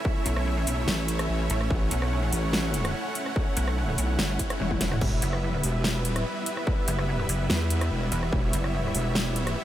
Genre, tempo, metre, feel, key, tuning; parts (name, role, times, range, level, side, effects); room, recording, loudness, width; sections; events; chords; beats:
heavy wobble dubstep; 145 BPM; 4/4; half-time; E dorian; A4 = 439 Hz
supersaw chords; sustained chords; 0.0-9.6 s; G3 to F#5; -30 LUFS; right 1 dB; analog chorus, sidechain pumping
electronic kick drum; drums; 0.1-8.4 s; -28 LUFS; equal; distortion
pulsing pluck wobble bass; bass; 0.3-8.9 s; E1 to B1; -27 LUFS; equal; chorus, overdrive
dubstep drum kit; drums; 0.3-9.5 s; crash cymbal, hi-hat, rim click, snare drum, toms; -31 LUFS; equal
wobble bass; bass; 0.9-9.6 s; E1 to E2; -27 LUFS; equal; chorus, overdrive
swell; sound effects; 4.4-5.0 s; -43 LUFS; left 1 dB
light reverb; -24 LUFS; side -12 dB against mid
0.0-9.6 A section
swell 4.4-5.0; drum fill 4.6-5.0
0.0 A; 5.0 Em
| 0.05 0.46 0.88 1.29 | 1.71 2.12 2.53 2.95 | 3.36 3.77 4.19 4.60 | 5.01 5.43 5.84 6.26 | 6.67 7.08 7.50 7.91 | 8.32 8.74 9.15 9.57